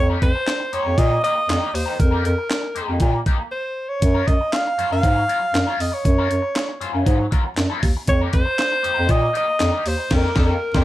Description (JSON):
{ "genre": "funk", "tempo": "118 BPM", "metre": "4/4", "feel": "straight", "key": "unclear", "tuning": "A4 = 440 Hz", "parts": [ { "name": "clear alto saxophone", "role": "melody", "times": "0.0-10.8 s", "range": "Bb4 to F5", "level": "-21 LUFS", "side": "equal", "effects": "slapback echo, plate reverb" }, { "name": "electric guitar at the edge of break-up", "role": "accompaniment", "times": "0.0-10.8 s", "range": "Gb3 to C5", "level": "-28 LUFS", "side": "left 4 dB", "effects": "wah" }, { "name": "mellow bass clarinet", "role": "bass", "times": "0.0-10.8 s", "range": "Eb2 to Bb2", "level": "-21 LUFS", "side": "equal", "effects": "none" }, { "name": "breakbeat sampler-style drum kit", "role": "drums", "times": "0.2-10.8 s", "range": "crash cymbal, handclaps, hi-hat, kick drum, snare drum", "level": "-20 LUFS", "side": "equal", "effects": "none" } ], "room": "light reverb", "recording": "none", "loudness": "-17 LUFS", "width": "side -15 dB against mid", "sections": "0.0-10.8 A section", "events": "break 3.5-4.0; band accent 10.1-10.8", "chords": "0.0 F9sus4; 4.0 Gbmaj7; 8.1 F9sus4", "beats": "0.47 0.98 1.49 | 2.00 2.50 3.01 3.52 | 4.03 4.53 5.04 5.55 | 6.05 6.56 7.07 7.58 | 8.08 8.59 9.10 9.61 | 10.11 10.62" }